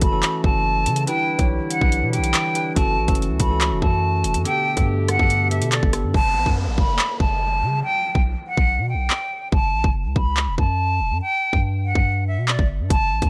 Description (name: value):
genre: hip hop, drill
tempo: 142 BPM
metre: 4/4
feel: half-time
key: F# phrygian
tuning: A4 = 436 Hz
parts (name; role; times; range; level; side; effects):
- bright silver concert flute; melody; 0.0-13.3 s; D5 to B5; -25 LUFS; equal; low-pass filter, digital delay
- bell-like tine electric piano; accompaniment; 0.0-6.2 s; D3 to C#5; -28 LUFS; equal; phaser, low-pass filter
- mellow woodwind section; sustained chords; 0.0-6.1 s; B2 to G4; -33 LUFS; equal; none
- long sustained 808-style bass; bass; 0.0-13.3 s; E1 to C#3; -25 LUFS; equal; none
- drill drum kit; drums; 0.0-13.3 s; handclaps, hi-hat, kick drum, rim click; -23 LUFS; equal; none
- downlifter; sound effects; 6.1-9.5 s; none; -37 LUFS; equal; none
room: little or no reverb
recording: none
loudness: -20 LUFS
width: mono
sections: 0.0-6.1 A section; 6.1-13.3 B section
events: hi-hats muted 6.1-12.9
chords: 0.0 F#m7; 1.1 Em7; 2.8 F#m7; 4.5 Gadd9; 6.1 F#m; 7.8 Gmaj7/B; 9.5 F#m7; 11.2 N.C.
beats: 0.23 0.65 | 1.07 1.50 1.92 2.34 | 2.76 3.19 3.61 4.03 | 4.45 4.88 5.30 5.72 | 6.14 6.57 6.99 7.41 | 7.83 8.26 8.68 9.10 | 9.52 9.95 10.37 10.79 | 11.21 11.64 12.06 12.48 | 12.90